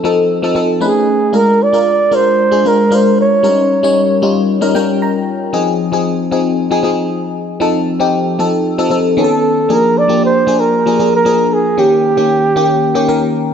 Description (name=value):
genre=pop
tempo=115 BPM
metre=4/4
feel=straight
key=F minor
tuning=A4 = 440 Hz
part: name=FM electric piano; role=accompaniment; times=0.0-13.5 s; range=D#3 to Bb5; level=-13 LUFS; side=left 2 dB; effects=phaser, lush chorus
part: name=breathy flugelhorn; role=melody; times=0.8-4.2, 9.2-13.4 s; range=G4 to D5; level=-13 LUFS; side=right 3 dB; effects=none
room=moderate plate reverb, RT60 3.0 s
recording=none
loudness=-10 LUFS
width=side -7 dB against mid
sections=0.0-13.5 A section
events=FM electric piano fill 4.5-5.5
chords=0.0 F7; 0.8 B9; 1.3 Bb7; 3.4 Eb7; 5.5 Fm7; 7.6 F7; 9.2 B9; 9.7 Bb7; 11.8 Eb7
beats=0.30 0.82 | 1.34 1.87 2.39 2.91 | 3.43 3.96 4.48 5.00 | 5.52 6.05 6.57 7.09 | 7.61 8.14 8.66 9.18 | 9.70 10.22 10.75 11.27 | 11.79 12.31 12.83 13.35